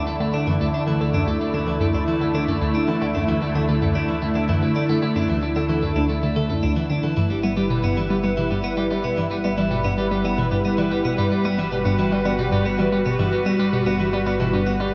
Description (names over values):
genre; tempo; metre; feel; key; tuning
ambient, sequencer-driven space music; 112 BPM; 4/4; straight; G major; A4 = 440 Hz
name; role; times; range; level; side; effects
lush unison pad; sustained chords; 0.0-14.9 s; D3 to B4; -25 LUFS; equal; chorus, phaser
twelve-string electric guitar; arpeggios; 0.0-14.9 s; E3 to A4; -28 LUFS; equal; tape echo
hollow square pluck; riff; 0.0-14.9 s; D2 to G3; -27 LUFS; equal; chorus, tape echo
fat analog bass; bass; 0.0-14.9 s; G1 to D2; -34 LUFS; equal; none
bubbling stepped-filter texture; texture; 0.0-7.2 s; D5; -41 LUFS; equal; none
room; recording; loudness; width
wet lush hall reverb, RT60 2.8 s; cassette tape; -21 LUFS; mono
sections
0.0-7.2 A section; 7.2-14.9 B section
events
none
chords
0.0 Dsus2; 7.2 G6